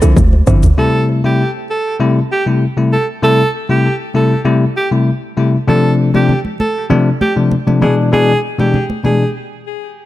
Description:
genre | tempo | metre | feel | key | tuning
afrobeats | 98 BPM | 4/4 | straight | A minor | A4 = 440 Hz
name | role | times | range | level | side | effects
bell-like tine electric piano | accompaniment | 0.0-9.2 s | B2 to E4 | -13 LUFS | left 2 dB | none
kalimba | riff | 0.0-0.6 s | A4 to C5 | -22 LUFS | right 4 dB | ping-pong delay
hard-hitting 808-style bass | bass | 0.0-0.7 s | G1 to D2 | -10 LUFS | equal | none
afro-pop drum kit | drums | 0.0-0.8 s | kick drum, shaker, toms | -13 LUFS | right 1 dB | none
congas | percussion | 0.2-0.6, 5.7-9.2 s | none | -20 LUFS | right 2 dB | none
edgy alto saxophone | melody | 0.8-9.3 s | G4 to A4 | -17 LUFS | right 1 dB | ping-pong delay
room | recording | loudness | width
light reverb, small room ambience | dark, warm production | -11 LUFS | side -15 dB against mid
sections
0.8-10.1 A section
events
drum fill 0.2-0.8; stop 9.3-10.1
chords
0.0 Dm9; 0.8 Am7; 5.7 Dm7; 7.8 E7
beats
0.17 | 0.78 1.39 2.00 2.62 | 3.23 3.84 4.45 5.06 | 5.68 6.29 6.90 7.51 | 8.12 8.74

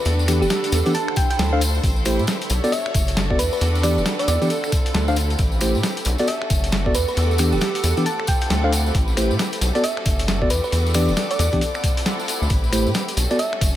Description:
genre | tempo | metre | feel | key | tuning
UK garage, two-step garage | 135 BPM | 4/4 | swing 62% on 16ths | A dorian | A4 = 441 Hz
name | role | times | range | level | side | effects
thumb-piano-like synth pluck | melody | 0.0-13.8 s | G4 to A5 | -26 LUFS | right 1 dB | chorus, dub echo
rich studio violin section | sustained chords | 0.0-13.8 s | B3 to C#5 | -31 LUFS | equal | sidechain pumping
granular cloud pad | texture | 0.0-13.8 s | D4 to D6 | -29 LUFS | right 2 dB | built-in reverb, sidechain pumping
rubbery square bass | bass | 0.1-13.8 s | E1 to A2 | -21 LUFS | equal | sidechain pumping
boom bap sampler-style drum kit | drums | 0.1-13.7 s | finger snaps, hi-hat, snare drum | -26 LUFS | equal | none
tambourine | percussion | 0.1-13.7 s | none | -30 LUFS | left 2 dB | none
mellow tine electric piano | stabs | 0.3-13.4 s | E3 to F5 | -24 LUFS | equal | dub echo
electronic kick drum | drums | 1.2-13.7 s | none | -21 LUFS | equal | none
room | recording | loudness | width
little or no reverb | none | -18 LUFS | side -12 dB against mid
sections
0.0-13.8 A section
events
none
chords
0.0 Em7; 0.9 Dm7; 1.8 Am7; 2.5 Bm7; 3.4 Em7; 4.5 Dm7; 5.4 Am7; 6.1 Bm7; 6.9 Em7; 8.1 Dm7; 8.9 Am7; 9.6 Bm7; 10.5 Em7; 11.6 Dm7; 12.5 Am7; 13.2 Bm7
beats
| 0.06 0.50 0.95 1.39 | 1.84 2.28 2.73 3.17 | 3.61 4.06 4.50 4.95 | 5.39 5.84 6.28 6.72 | 7.17 7.61 8.06 8.50 | 8.95 9.39 9.84 10.28 | 10.72 11.17 11.61 12.06 | 12.50 12.95 13.39

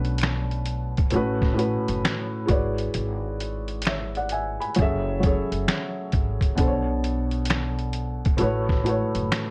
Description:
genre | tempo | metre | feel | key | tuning
lo-fi hip hop | 66 BPM | 4/4 | swing 65% on 16ths | B dorian | A4 = 440 Hz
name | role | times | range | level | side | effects
felt-muted upright piano | accompaniment | 0.0-9.5 s | A2 to B5 | -28 LUFS | equal | cassette tape, low-pass filter
upright bass | bass | 0.0-9.3 s | F#1 to B1 | -31 LUFS | equal | none
trip hop sampler-style drum kit | drums | 0.0-9.5 s | finger snaps, hi-hat, kick drum, snare drum | -27 LUFS | equal | none
finger snaps | percussion | 0.2-9.5 s | none | -41 LUFS | equal | none
room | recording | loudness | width
light reverb | cassette tape | -25 LUFS | mono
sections
0.0-9.5 A section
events
none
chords
0.0 Bm9; 1.1 A6; 2.5 E13/G#; 4.8 F#m7; 6.6 Bm9; 8.4 A6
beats
0.22 1.13 2.04 | 2.95 3.85 4.76 5.67 | 6.58 7.49 8.40 9.31

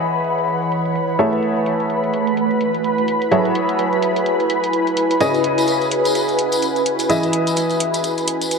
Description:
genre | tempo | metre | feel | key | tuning
piano house | 127 BPM | 4/4 | swing 58% on 16ths | unclear | A4 = 440 Hz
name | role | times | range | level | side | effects
analog string pad | sustained chords | 0.0-8.6 s | B4 to B5 | -22 LUFS | left 1 dB | ensemble chorus
warm upright piano | riff | 0.0-8.6 s | C#3 to E5 | -21 LUFS | equal | low-pass filter, tape echo
electronic hi-hat | drums | 0.0-8.6 s | none | -27 LUFS | equal | low-pass filter on hats, low-pass filter on perc, low-pass filter on snare, low-pass filter on cymbals, low-pass filter on room
ethereal airy pad | texture | 0.0-8.6 s | A3 to B5 | -21 LUFS | right 1 dB | ensemble chorus, built-in reverb, phaser
tambourine | percussion | 5.2-8.6 s | none | -28 LUFS | left 3 dB | none
room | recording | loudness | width
moderate plate reverb, RT60 2.5 s | none | -16 LUFS | side -4 dB against mid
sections
0.0-8.6 A section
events
filter sweep on drum 0.0-8.6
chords
0.0 Emaj7; 1.2 Amaj7; 3.3 F#m9; 5.2 C#m9; 7.1 Emaj7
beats
0.01 0.48 0.95 | 1.43 1.90 2.37 2.84 | 3.31 3.79 4.26 4.73 | 5.21 5.68 6.15 6.62 | 7.09 7.57 8.04 8.51

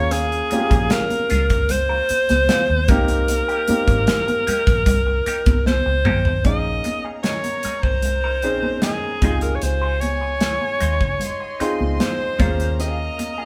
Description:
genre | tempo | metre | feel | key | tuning
lush 1970s-style soul | 76 BPM | 4/4 | straight | Bb dorian | A4 = 440 Hz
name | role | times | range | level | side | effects
edgy alto saxophone | melody | 0.0-13.5 s | Ab4 to Eb5 | -24 LUFS | equal | none
warm baby grand piano | accompaniment | 0.0-13.5 s | C3 to Ab4 | -29 LUFS | equal | none
vintage muted fingered electric bass | bass | 0.0-13.1 s | Ab1 to Db3 | -25 LUFS | equal | none
semi-hollow electric guitar | riff | 0.1-13.5 s | Bb3 to C5 | -34 LUFS | equal | wah
modern studio drum kit | drums | 0.1-13.4 s | hi-hat, kick drum, snare drum, toms | -24 LUFS | equal | none
congas | percussion | 0.1-13.4 s | none | -31 LUFS | equal | none
warm studio violin section | second line | 6.4-13.5 s | Ab4 to C6 | -38 LUFS | equal | none
room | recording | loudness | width
moderate studio reverb, RT60 0.9 s | band playing live in one room | -20 LUFS | mono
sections
0.0-6.4 A section; 6.4-13.5 B section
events
drum fill 5.7-6.4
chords
0.0 Eb9sus4; 2.9 Cm7; 6.4 Bbm11; 9.2 Dbmaj9; 12.4 Eb9sus4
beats
| 0.12 0.91 1.70 2.49 | 3.28 4.08 4.87 5.66 | 6.45 7.24 8.03 8.83 | 9.62 10.41 11.20 12.00 | 12.79

